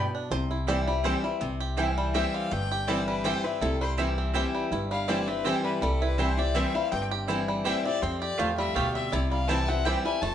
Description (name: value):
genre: bluegrass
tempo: 164 BPM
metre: 3/4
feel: swing 54% on 8ths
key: C major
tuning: A4 = 440 Hz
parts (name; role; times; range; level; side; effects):
- bluegrass banjo; melody; 0.0-10.3 s; G3 to D5; -32 LUFS; right 2 dB; none
- picked steel-string acoustic guitar; accompaniment; 0.0-10.3 s; F2 to E4; -30 LUFS; left 3 dB; none
- mandolin; stabs; 0.0-10.0 s; A3 to G5; -33 LUFS; right 4 dB; none
- upright bass; bass; 0.0-10.3 s; F1 to F2; -31 LUFS; equal; none
- clear fiddle; second line; 2.1-10.3 s; A4 to A5; -33 LUFS; left 3 dB; none
room: wet studio reverb, RT60 0.6 s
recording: heard from further back in the room, nothing above 10.3 kHz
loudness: -25 LUFS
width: side -10 dB against mid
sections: 0.0-1.4 A section; 1.4-10.2 A section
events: five-string banjo solo 0.0-1.4; fiddle solo 1.4-10.3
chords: 0.3 C; 8.0 Fadd9; 9.1 C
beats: | 0.32 0.68 1.05 | 1.41 1.78 2.15 | 2.52 2.88 3.25 | 3.62 3.98 4.35 | 4.72 5.08 5.45 | 5.82 6.19 6.55 | 6.92 7.29 7.65 | 8.02 8.39 8.76 | 9.12 9.49 9.86 | 10.22